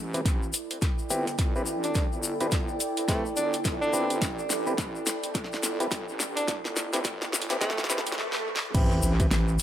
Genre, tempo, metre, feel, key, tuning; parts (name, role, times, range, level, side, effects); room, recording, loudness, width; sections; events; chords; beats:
glitch hop; 106 BPM; 4/4; swing 60% on 16ths; A minor; A4 = 442 Hz
wobble bass; bass; 0.0-9.6 s; G1 to A1; -33 LUFS; equal; chorus, high-pass filter
warbly tape-like pad; texture; 0.1-8.2 s; E4 to G5; -34 LUFS; right 1 dB; chorus, built-in reverb, sidechain pumping
mellow clav; stabs; 0.1-9.3 s; C4 to B4; -33 LUFS; equal; sidechain pumping, low-pass filter, dub echo
pop drum kit; drums; 0.1-9.6 s; crash cymbal, hi-hat, snare drum; -32 LUFS; equal; high-pass filter on hats, high-pass filter on snare, high-pass filter on cymbals, dub echo
tube shaker; percussion; 0.1-9.6 s; -33 LUFS; left 5 dB
electronic kick drum; drums; 0.3-9.3 s; -28 LUFS; equal
breathy tenor saxophone; melody; 1.8-7.8 s; A3 to D4; -34 LUFS; right 1 dB; dub echo
swell and sub drop; sound effects; 7.9-9.6 s; -34 LUFS; equal
moderate plate reverb, RT60 2.4 s; echo-heavy mix, high-pass filter; -25 LUFS; side -11 dB against mid
0.0-8.7 A section
build-up 0.0-8.7; drum fill 0.0-8.2, 8.2-8.7; filter sweep 0.0-8.7; swell 7.9-8.7; impact 8.7-9.6
0.0 Am9
0.26 0.82 1.39 | 1.95 2.52 3.09 3.65 | 4.22 4.79 5.35 5.92 | 6.48 7.05 7.62 8.18 | 8.75 9.31